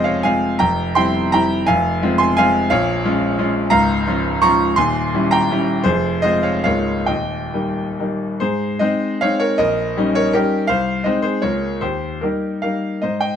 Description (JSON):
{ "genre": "classical, romantic triple-time dance for piano with dotted rhythms", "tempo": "124-183 BPM", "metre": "3/4", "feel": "rubato", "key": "F minor", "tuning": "A4 = 439 Hz", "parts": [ { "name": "bright grand piano", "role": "solo", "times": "0.0-13.4 s", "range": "Db1 to Db6", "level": "-16 LUFS", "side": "equal", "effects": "none" } ], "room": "light reverb", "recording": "close, detailed microphones", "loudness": "-16 LUFS", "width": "side -8 dB against mid", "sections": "0.0-8.4 A section; 8.4-13.4 B section", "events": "none", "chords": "0.0 Fm; 0.6 C7/F; 1.7 Fm; 2.7 Bbm7; 3.7 Bbm/Db; 4.8 Eb7b9; 5.9 Fm; 6.7 Bbm7/Db; 7.1 Eb; 8.4 Ab; 9.6 Eb7/Bb; 10.7 Ab/C; 11.4 Bbm7/Db; 11.8 Eb", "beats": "0.25 | 0.60 0.96 1.33 | 1.68 2.03 2.38 | 2.71 3.06 3.40 | 3.73 4.08 4.44 | 4.79 5.14 5.51 | 5.86 6.24 6.66 | 7.08 7.54 8.00 | 8.42 8.81 9.21 | 9.59 9.96 10.33 | 10.68 11.04 11.42 | 11.81 12.21 12.62 | 13.02" }